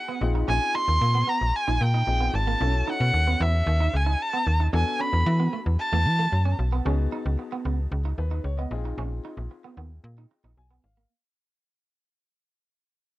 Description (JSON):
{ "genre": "funk", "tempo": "113 BPM", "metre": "4/4", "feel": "straight", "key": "unclear", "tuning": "A4 = 443 Hz", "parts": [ { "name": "clear erhu", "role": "melody", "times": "0.0-6.6 s", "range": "E5 to B#5", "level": "-26 LUFS", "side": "equal", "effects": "cassette tape" }, { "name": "warm baby grand piano", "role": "accompaniment", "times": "0.0-11.1 s", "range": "B3 to G#5", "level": "-36 LUFS", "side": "left 7 dB", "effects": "none" }, { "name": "clean electric guitar", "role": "riff", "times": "0.1-11.1 s", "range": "A3 to D#4", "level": "-34 LUFS", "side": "right 8 dB", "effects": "analog chorus" }, { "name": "slap-like FM bass", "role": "bass", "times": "0.2-11.1 s", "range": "G#1 to E3", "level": "-23 LUFS", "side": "equal", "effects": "none" } ], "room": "little or no reverb", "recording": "home recording on cassette", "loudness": "-22 LUFS", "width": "side -17 dB against mid", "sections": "0.0-6.9 A section; 6.9-11.1 B section", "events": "fade-out 6.9-11.1; grand piano fill 10.3-11.1", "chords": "0.2 A#9sus4; 2.6 B9sus4; 4.7 E9sus4; 6.9 C#9sus4; 8.7 A#9sus4" }